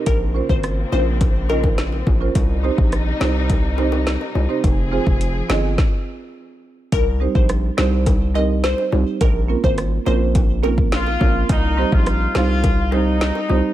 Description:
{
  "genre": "dancehall",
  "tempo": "105 BPM",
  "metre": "4/4",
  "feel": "straight",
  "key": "C phrygian",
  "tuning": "A4 = 438 Hz",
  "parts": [
    { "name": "marimba with medium mallets", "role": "accompaniment", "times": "0.0-13.6 s", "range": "G3 to Eb5", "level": "-23 LUFS", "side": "right 6 dB", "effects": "none" },
    { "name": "warm symphonic string section", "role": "sustained chords", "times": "0.0-5.8 s", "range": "C3 to Ab4", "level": "-29 LUFS", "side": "left 4 dB", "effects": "sidechain pumping" },
    { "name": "glassy wavetable pluck", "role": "melody", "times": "0.1-1.6, 6.9-10.8 s", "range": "Bb4 to Eb5", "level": "-25 LUFS", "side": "left 1 dB", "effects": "chorus, digital delay" },
    { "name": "hard-hitting 808-style bass", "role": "bass", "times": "0.1-13.6 s", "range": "F1 to C2", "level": "-20 LUFS", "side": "equal", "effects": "none" },
    { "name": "afro-pop drum kit", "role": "drums", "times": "0.1-13.3 s", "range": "hi-hat, kick drum, rim click, snare drum", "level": "-20 LUFS", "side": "equal", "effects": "none" },
    { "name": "bongos", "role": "percussion", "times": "0.1-13.6 s", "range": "none", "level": "-30 LUFS", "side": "left 5 dB", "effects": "none" },
    { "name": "clear horn section", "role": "second line", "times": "10.9-13.7 s", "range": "Eb4 to F4", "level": "-23 LUFS", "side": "left 2 dB", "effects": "digital delay" }
  ],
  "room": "studio reverb",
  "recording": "none",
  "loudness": "-16 LUFS",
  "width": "side -13 dB against mid",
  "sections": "0.0-6.9 A section; 6.9-13.7 B section",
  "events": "stop 5.8-6.9",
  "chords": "0.1 Bbmadd9; 2.4 Cm; 4.6 Fm; 6.9 Cm; 9.2 Bbmadd9; 11.5 Cm",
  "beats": "| 0.07 0.64 1.21 1.78 | 2.35 2.92 3.50 4.07 | 4.64 5.21 5.78 6.35 | 6.92 7.50 8.07 8.64 | 9.21 9.78 10.35 10.92 | 11.50 12.07 12.64 13.21"
}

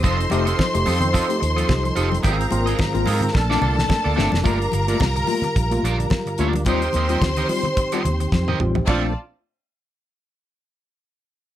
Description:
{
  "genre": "disco",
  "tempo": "108 BPM",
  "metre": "4/4",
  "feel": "swing 56% on 16ths",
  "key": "Bb major",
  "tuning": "A4 = 440 Hz",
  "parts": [
    { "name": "rich symphonic string section", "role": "second line", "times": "0.0-9.1 s", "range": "F4 to C6", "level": "-25 LUFS", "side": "left 1 dB", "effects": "none" },
    { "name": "electric guitar at the edge of break-up", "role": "accompaniment", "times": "0.0-9.1 s", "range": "C4 to Eb5", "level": "-27 LUFS", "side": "right 5 dB", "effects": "wide subtle chorus" },
    { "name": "tine electric piano", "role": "accompaniment", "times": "0.0-9.1 s", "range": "G2 to G4", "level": "-26 LUFS", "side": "left 4 dB", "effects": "medium stereo tremolo" },
    { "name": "percussive tonewheel organ", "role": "sustained chords", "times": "0.0-9.1 s", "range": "Bb2 to Bb4", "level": "-29 LUFS", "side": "right 2 dB", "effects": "chorus vibrato, fast rotary speaker" },
    { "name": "vintage muted fingered electric bass", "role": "bass", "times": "0.0-9.1 s", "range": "F1 to Ab2", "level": "-22 LUFS", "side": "right 1 dB", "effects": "none" },
    { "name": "damped 70s drum kit", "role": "drums", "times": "0.0-9.0 s", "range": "china cymbal, hi-hat, kick drum, snare drum, toms", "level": "-24 LUFS", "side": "equal", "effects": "none" },
    { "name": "congas", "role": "percussion", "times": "0.0-9.1 s", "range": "none", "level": "-28 LUFS", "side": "left 4 dB", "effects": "none" }
  ],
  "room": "light reverb",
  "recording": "none",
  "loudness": "-18 LUFS",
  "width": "side -12 dB against mid",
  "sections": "0.0-4.5 A section; 4.5-8.9 B section; 8.9-11.1 C section",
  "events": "drum fill 3.3-4.5, 8.3-8.9",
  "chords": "0.0 F7; 2.2 Ab6; 3.3 Bbmaj7; 4.5 Gm7; 6.7 Eb6; 8.9 Bbmaj9",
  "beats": "| 0.04 0.59 1.14 1.69 | 2.24 2.79 3.35 3.90 | 4.45 5.00 5.55 6.11 | 6.66 7.22 7.77 8.32 | 8.88"
}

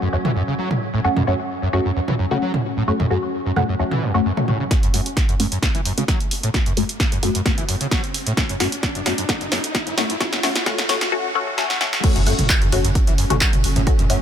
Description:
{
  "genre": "driving peak-time techno",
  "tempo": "131 BPM",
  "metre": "4/4",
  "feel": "straight",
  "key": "F# minor",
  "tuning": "A4 = 440 Hz",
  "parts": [
    { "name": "screaming distorted acid line", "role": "riff", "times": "0.0-14.2 s", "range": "E2 to F#3", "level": "-24 LUFS", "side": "equal", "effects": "distortion, ensemble chorus, sidechain pumping, ping-pong delay" },
    { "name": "filtered dub chord stab", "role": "stabs", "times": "0.0-14.2 s", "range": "A3 to F#4", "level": "-24 LUFS", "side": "left 3 dB", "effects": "phaser, analog chorus, sidechain pumping, ping-pong delay" },
    { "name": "swarming drone", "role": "drone", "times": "0.0-4.8, 12.9-14.2 s", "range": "F#3 to C#4", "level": "-30 LUFS", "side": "right 2 dB", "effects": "built-in reverb, sidechain pumping" },
    { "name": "punchy analog drum machine", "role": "drums", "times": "0.2-14.2 s", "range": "crash cymbal, handclaps, hi-hat, snare drum, toms", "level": "-22 LUFS", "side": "right 1 dB", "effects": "sidechain pumping on toms, sidechain pumping on hats, sidechain pumping on cymbals" },
    { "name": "electronic kick drum", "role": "drums", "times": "4.7-14.0 s", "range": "none", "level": "-20 LUFS", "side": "equal", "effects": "none" },
    { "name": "riser and impact", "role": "sound effects", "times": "6.3-13.9 s", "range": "none", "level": "-30 LUFS", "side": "equal", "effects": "none" },
    { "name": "growling 808-style bass", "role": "bass", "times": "12.2-14.1 s", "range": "F#1", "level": "-24 LUFS", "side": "equal", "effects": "tube saturation, sidechain pumping, low-pass filter" }
  ],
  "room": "light reverb",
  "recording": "high-pass filter",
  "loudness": "-17 LUFS",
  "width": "side -9 dB against mid",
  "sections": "0.0-4.7 A section; 4.7-12.0 B section; 12.0-14.2 C section",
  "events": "filter sweep on drum 0.0-4.7; build-up 4.7-12.0; drum fill 4.7-11.1, 11.6-12.0; filter sweep on acid bass 4.7-12.0; filter sweep on synth stab 4.7-12.0; filter sweep 4.7-12.0; riser 6.3-11.1; drop 12.0-14.2; impact 12.0-13.9",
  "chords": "0.0 F#m",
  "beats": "0.13 0.59 | 1.04 1.50 1.96 2.42 | 2.88 3.33 3.79 4.25 | 4.71 5.17 5.62 6.08 | 6.54 7.00 7.46 7.92 | 8.37 8.83 9.29 9.75 | 10.21 10.66 11.12 11.58 | 12.04 12.49 12.95 13.41 | 13.87"
}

